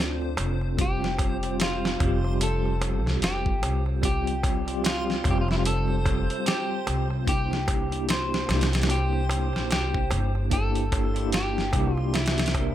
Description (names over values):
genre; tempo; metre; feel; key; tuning
trip hop; 74 BPM; 4/4; swing 59% on 16ths; unclear; A4 = 440 Hz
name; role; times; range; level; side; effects
electric guitar at the edge of break-up; melody; 0.0-12.7 s; D4 to C5; -31 LUFS; left 1 dB; tape echo
bell-like tine electric piano; accompaniment; 0.0-12.7 s; G3 to C5; -30 LUFS; equal; fast stereo tremolo
upright bass; bass; 0.0-12.7 s; F1 to D2; -27 LUFS; equal; none
backwards swelling texture; texture; 0.1-12.7 s; C5; -39 LUFS; right 2 dB; built-in reverb
darbuka; percussion; 0.2-12.7 s; none; -38 LUFS; right 2 dB; none
dusty soul sampler-style drum kit; drums; 0.4-12.7 s; hi-hat, kick drum, snare drum; -27 LUFS; equal; none
room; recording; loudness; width
little or no reverb; none; -23 LUFS; side -12 dB against mid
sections
0.0-12.7 A section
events
none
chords
0.0 Bbmaj7 (rootless); 0.8 Fsus2; 7.3 C7